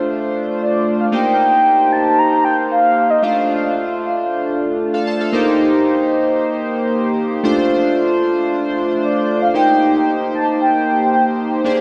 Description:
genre	funk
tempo	114 BPM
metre	4/4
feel	straight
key	C dorian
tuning	A4 = 438 Hz
part	mellow horn-like synth lead	melody	0.0-4.3, 9.0-11.8 s	C5 to Bb5	-18 LUFS	equal	chorus, tape echo
part	chorused polysynth	accompaniment	0.0-11.8 s	A3 to A5	-18 LUFS	equal	none
room	wet lush hall reverb, RT60 2.8 s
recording	dreamy mix soaked in reverb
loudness	-16 LUFS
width	mono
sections	0.0-11.8 A section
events	none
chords	0.0 Dm7; 1.1 Cm7; 3.2 Dm7; 5.3 Cm7; 7.4 Dm7; 9.5 Cm7

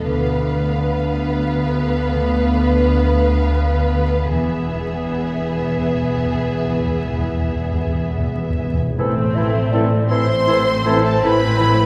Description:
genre	classical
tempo	50-59 BPM (dotted quarters)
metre	12/8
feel	rubato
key	A minor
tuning	A4 = 440 Hz
part	warm symphonic violin section	melody	0.0-11.9 s	E5 to C6	-29 LUFS	equal	none
part	warm symphonic violin section	second line	0.0-11.9 s	G#4 to C5	-28 LUFS	equal	none
part	rich symphonic viola section	accompaniment	0.0-11.9 s	A3 to E4	-26 LUFS	equal	none
part	concert harp	arpeggios	0.0-11.9 s	A2 to F5	-30 LUFS	equal	none
part	rich studio double bass section	bass	0.1-11.9 s	E1 to D2	-24 LUFS	equal	none
part	warm symphonic cello section	bass	0.1-11.9 s	D2 to A2	-27 LUFS	equal	none
part	timpani	percussion	4.3-10.1 s	E2 to A2	-27 LUFS	equal	none
part	clear clarinet	second line	9.0-11.8 s	E4	-29 LUFS	equal	none
part	mellow cor anglais	second line	9.0-11.7 s	A4	-30 LUFS	equal	none
part	mellow hollow silver concert flute	second line	9.0-11.9 s	C5 to E5	-26 LUFS	equal	none
part	mellow bassoon	accompaniment	9.0-11.8 s	E3	-29 LUFS	equal	none
part	dark French horn section	sustained chords	9.7-11.0 s	C4 to E4	-31 LUFS	equal	none
part	dark trombone section	sustained chords	9.7-11.0 s	E3 to A3	-32 LUFS	equal	none
part	mellow trumpet	stabs	9.7-11.0 s	A4	-30 LUFS	equal	none
room	wet recital hall reverb, RT60 1.4 s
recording	heard from further back in the room, vinyl crackle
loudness	-19 LUFS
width	mono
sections	0.0-9.0 A section; 9.0-11.9 B section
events	timpani fill 4.3-9.0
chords	0.1 Bdim/D; 4.3 E; 9.0 Am

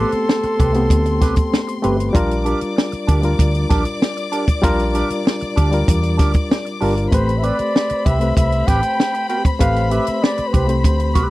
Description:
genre	lush 1970s-style soul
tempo	96 BPM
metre	4/4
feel	straight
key	A minor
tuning	A4 = 440 Hz
part	breathy flugelhorn	melody	0.0-1.8, 7.1-11.2 s	A4 to G5	-21 LUFS	equal	none
part	warm studio string section	second line	0.0-11.3 s	C4 to D6	-27 LUFS	left 4 dB	none
part	barky reed electric piano	accompaniment	0.0-11.3 s	G3 to C5	-22 LUFS	left 2 dB	overdrive, fast tremolo
part	mellow electric guitar	riff	0.0-11.3 s	C4 to B4	-24 LUFS	right 4 dB	wah
part	hollow-body short-scale fingered electric bass	bass	0.0-11.3 s	G1 to E2	-19 LUFS	equal	none
part	compact cocktail drum kit	drums	0.1-11.3 s	hi-hat, kick drum, snare drum	-17 LUFS	equal	none
room	little or no reverb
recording	dry, close 1970s-style studio recording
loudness	-15 LUFS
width	side -18 dB against mid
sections	0.0-11.3 A section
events	none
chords	0.0 Am9; 2.1 Bb6; 7.1 Am9

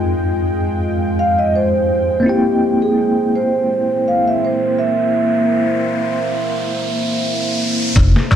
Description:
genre	trip hop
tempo	84 BPM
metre	4/4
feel	swing 53% on 16ths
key	unclear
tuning	A4 = 440 Hz
part	bell-like tine electric piano	accompaniment	0.0-7.9 s	F2 to G5	-21 LUFS	equal	tremolo, low-pass filter, tape echo
part	deep dark ambient pad	sustained chords	0.0-8.4 s	Ab3 to F5	-21 LUFS	left 2 dB	chorus, built-in reverb
part	bowed-like drone	texture	0.0-8.0 s	Ab3 to G5	-28 LUFS	left 1 dB	built-in reverb
part	vibraphone with soft mallets	melody	1.2-7.6 s	G4 to F5	-18 LUFS	right 2 dB	vintage 12-bit sampler grit, tape echo
part	riser	sound effects	4.5-8.0 s	none	-25 LUFS	equal	none
part	upright bass	bass	8.0-8.4 s	F1	-14 LUFS	equal	tube saturation
part	trip hop sampler-style drum kit	drums	8.0-8.4 s	hi-hat, kick drum, snare drum	-13 LUFS	equal	vintage 12-bit sampler grit
part	darbuka	percussion	8.0-8.4 s	none	-22 LUFS	left 3 dB	none
room	moderate echo chamber reverb, RT60 1.5 s, digital ambience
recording	dark, warm production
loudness	-14 LUFS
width	side -9 dB against mid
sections	0.0-8.0 A section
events	filter sweep on tine electric piano 0.0-8.0; filter sweep on ambient pad 0.0-8.0; riser 4.5-8.0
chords	0.0 Fm7; 2.2 C7

